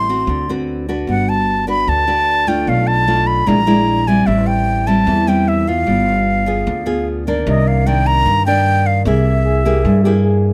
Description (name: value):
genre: bossa nova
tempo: 150 BPM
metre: 4/4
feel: straight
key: unclear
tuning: A4 = 440 Hz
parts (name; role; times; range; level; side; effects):
- reedy concert flute; melody; 0.0-10.2 s; Eb5 to C6; -19 LUFS; equal; none
- nylon-string guitar; accompaniment; 0.0-10.5 s; G2 to B4; -20 LUFS; equal; none
- upright bass; bass; 0.0-10.5 s; G1 to G2; -20 LUFS; equal; none
- breathy trombone; second line; 9.4-10.5 s; G4 to Ab4; -23 LUFS; equal; none
room: little or no reverb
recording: close, detailed microphones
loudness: -15 LUFS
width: mono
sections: 0.0-7.5 A section; 7.5-10.5 B section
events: none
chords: 0.3 D6; 1.1 Gmaj7; 2.7 Bm7b5; 3.5 Bb7#11; 4.3 Am7; 5.9 G7b9; 7.5 Cm9; 9.1 C7b13